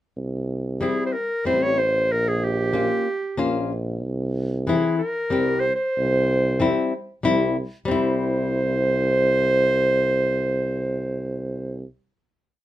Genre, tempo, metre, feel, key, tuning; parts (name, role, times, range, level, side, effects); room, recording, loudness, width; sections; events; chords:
klezmer; 94 BPM; 3/4; straight; C phrygian dominant; A4 = 438 Hz
warm tuba; bass; 0.2-11.8 s; A1 to C2; -25 LUFS; right 1 dB
warm clarinet; melody; 0.8-11.8 s; G4 to Db5; -22 LUFS; right 1 dB
nylon-string guitar; accompaniment; 0.8-11.9 s; E3 to G4; -23 LUFS; left 4 dB
light reverb; minimal, uncompressed stereo recording; -20 LUFS; side -13 dB against mid
0.2-7.9 A section; 7.9-11.7 final chord
0.2 C; 2.1 Bbm; 4.0 C